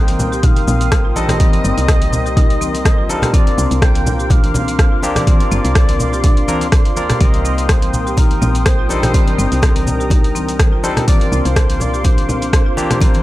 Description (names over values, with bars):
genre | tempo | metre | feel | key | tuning
afro house | 124 BPM | 4/4 | swing 55% on 16ths | C minor | A4 = 438 Hz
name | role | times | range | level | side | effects
expressive synth lead | melody | 0.0-13.2 s | Bb4 to G5 | -24 LUFS | equal | wide subtle chorus, analog delay
warm analog pad | sustained chords | 0.0-13.2 s | Bb4 to Eb6 | -26 LUFS | right 2 dB | chorus, vintage 12-bit sampler grit, sidechain pumping
marimba with medium hard mallets | arpeggios | 0.0-13.1 s | C4 to C5 | -24 LUFS | left 2 dB | sidechain pumping, analog delay
barky tine electric piano | stabs | 0.0-13.2 s | G3 to Bb4 | -24 LUFS | left 2 dB | overdrive, sidechain pumping, analog delay
woody FM bass | bass | 0.0-13.0 s | G1 to D2 | -21 LUFS | equal | sidechain pumping
afro-pop drum kit | drums | 0.1-13.2 s | hi-hat, rim click, shaker | -22 LUFS | left 1 dB | small room ambience
congas | percussion | 0.1-13.2 s | none | -22 LUFS | equal | none
electronic kick drum | drums | 0.4-13.1 s | none | -13 LUFS | equal | small room ambience
room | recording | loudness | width
little or no reverb | dry, gritty hardware recording | -12 LUFS | side -16 dB against mid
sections
0.0-13.2 A section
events
none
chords
0.0 Cm7; 3.3 Bbadd9/C; 7.2 Cm7; 11.1 Bbadd9/C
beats
0.43 0.92 | 1.40 1.89 2.37 2.85 | 3.34 3.82 4.30 4.79 | 5.27 5.76 6.24 6.72 | 7.21 7.69 8.18 8.66 | 9.14 9.63 10.11 10.59 | 11.08 11.56 12.05 12.53 | 13.01